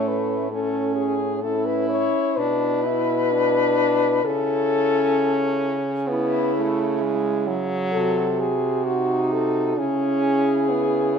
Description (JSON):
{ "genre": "classical, lyrical piece for horn quartet", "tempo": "65 BPM", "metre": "4/4", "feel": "rubato", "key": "F# minor", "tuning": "A4 = 440 Hz", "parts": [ { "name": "warm French horn", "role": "melody", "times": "0.0-11.2 s", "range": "E4 to C#5", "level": "-23 LUFS", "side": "left 7 dB", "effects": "none" }, { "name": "mellow French horn", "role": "second line", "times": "0.0-11.2 s", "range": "C#4 to Gb4", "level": "-27 LUFS", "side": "right 15 dB", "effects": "none" }, { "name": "warm French horn", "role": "accompaniment", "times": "0.0-11.2 s", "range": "F#3 to E4", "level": "-25 LUFS", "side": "equal", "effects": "none" }, { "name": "clear French horn", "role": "bass", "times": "0.0-11.2 s", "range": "A2 to C#3", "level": "-28 LUFS", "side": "right 3 dB", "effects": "none" } ], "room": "light reverb", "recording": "close, detailed microphones", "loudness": "-19 LUFS", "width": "side -6 dB against mid", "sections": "0.0-11.2 A section", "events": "none", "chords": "0.0 F#m/A (rootless); 2.4 E5/B; 4.2 A/C#; 7.9 Cdim7; 9.8 C#m" }